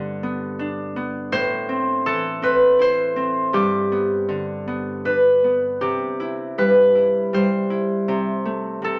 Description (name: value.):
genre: children's music, lullaby.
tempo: 81 BPM.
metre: 3/4.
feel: rubato.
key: C major.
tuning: A4 = 444 Hz.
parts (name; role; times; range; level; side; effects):
concert harp; melody; 0.0-9.0 s; G4 to C5; -22 LUFS; equal; none.
Celtic harp; accompaniment; 0.0-9.0 s; G2 to E4; -25 LUFS; equal; none.
room: moderate club reverb, RT60 0.7 s.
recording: none.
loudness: -21 LUFS.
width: mono.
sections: 0.0-5.8 A section; 5.8-9.0 B section.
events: none.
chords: 0.0 G; 1.3 Am; 3.5 G; 5.8 C; 8.1 Am/C.